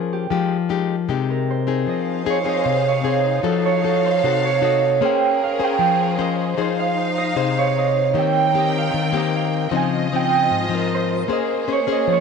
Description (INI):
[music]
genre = bossa nova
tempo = 153 BPM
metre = 4/4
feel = straight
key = F minor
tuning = A4 = 440 Hz
[part]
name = Celtic harp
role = melody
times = 0.0-12.2 s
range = G4 to Ab5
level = -21 LUFS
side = right 11 dB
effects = none
[part]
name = nylon-string guitar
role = accompaniment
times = 0.0-12.2 s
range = Ab2 to C5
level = -21 LUFS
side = left 9 dB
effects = none
[part]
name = warm symphonic string section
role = sustained chords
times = 1.9-12.2 s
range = Eb3 to G5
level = -26 LUFS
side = left 1 dB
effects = none
[sound]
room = light reverb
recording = 1960s-style stereo with parts hard left and right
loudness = -17 LUFS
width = side -5 dB against mid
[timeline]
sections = 0.0-1.9 A section; 1.9-12.2 B section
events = none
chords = 0.3 Fm9; 1.9 Fm7; 3.4 F7b9; 5.0 Bbm9; 6.6 Fm7; 8.1 Eb69; 9.7 Dbmaj9; 11.3 Bbm9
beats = | 0.31 0.70 1.09 1.48 | 1.88 2.27 2.66 3.05 | 3.44 3.84 4.23 4.62 | 5.01 5.40 5.80 6.19 | 6.58 6.97 7.36 7.76 | 8.15 8.54 8.93 9.32 | 9.71 10.11 10.50 10.89 | 11.28 11.68 12.07